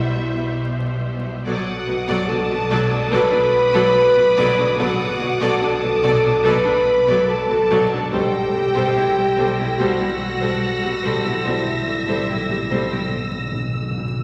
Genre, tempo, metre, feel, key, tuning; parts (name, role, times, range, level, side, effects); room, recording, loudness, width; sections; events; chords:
cinematic, suspense film score; 72 BPM; 4/4; straight; B phrygian; A4 = 440 Hz
rich studio violin section; melody; 0.0-13.0 s; G4 to E5; -32 LUFS; equal
rich studio violin section; second line; 0.0-13.1 s; E5 to B5; -32 LUFS; equal
rich studio viola section; accompaniment; 0.0-13.0 s; F#3 to C5; -26 LUFS; equal
mellow French horn section; sustained chords; 0.0-13.1 s; E4 to B4; -21 LUFS; equal
bright studio cello section; bass; 0.0-13.0 s; B2; -32 LUFS; equal
rich studio double bass section; bass; 0.0-12.8 s; B1; -32 LUFS; equal
deep rumbling drone; drone; 0.0-14.2 s; B1; -34 LUFS; equal; built-in reverb
rich studio violin section; texture; 1.5-14.2 s; D6 to A#6; -31 LUFS; equal
timpani; percussion; 8.1-14.2 s; B2; -31 LUFS; equal
wet concert hall reverb, RT60 2.2 s; vinyl crackle; -19 LUFS; mono
0.0-14.2 A section
timpani fill 8.1-14.2; break 13.1-14.2
0.0 C/B; 1.5 Bm7; 8.1 C6/B